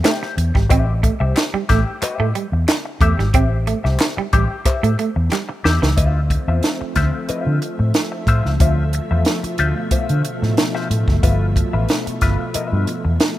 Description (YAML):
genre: funk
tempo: 91 BPM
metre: 4/4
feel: straight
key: unclear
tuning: A4 = 440 Hz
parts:
  - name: semi-hollow electric guitar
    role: accompaniment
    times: 0.0-13.1 s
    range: F4 to E5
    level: -25 LUFS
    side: left 5 dB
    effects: wah, spring reverb
  - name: electric guitar at the edge of break-up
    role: riff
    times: 0.0-5.9 s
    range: E3 to C4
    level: -23 LUFS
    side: right 7 dB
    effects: tremolo
  - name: compact cocktail drum kit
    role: drums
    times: 0.0-13.4 s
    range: hi-hat, kick drum, snare drum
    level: -19 LUFS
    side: equal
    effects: none
  - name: group handclap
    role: percussion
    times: 0.1-5.5 s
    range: none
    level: -28 LUFS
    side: left 4 dB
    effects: none
  - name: vintage muted fingered electric bass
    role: bass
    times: 0.4-13.2 s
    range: F#1 to D3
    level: -18 LUFS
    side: equal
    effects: none
  - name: soft string machine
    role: sustained chords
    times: 6.2-13.4 s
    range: B2 to E5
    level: -25 LUFS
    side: equal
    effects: ensemble chorus
room: small room ambience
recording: rough home demo mix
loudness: -16 LUFS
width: side -14 dB against mid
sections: 0.0-6.0 A section; 6.0-13.4 B section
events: drum fill 5.3-6.0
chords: 0.0 Am7; 6.0 Dm9; 11.2 G13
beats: 0.05 | 0.71 1.36 2.02 2.68 | 3.34 4.00 4.66 5.32 | 5.97 6.63 7.29 7.95 | 8.60 9.26 9.92 10.57 | 11.23 11.89 12.54 13.20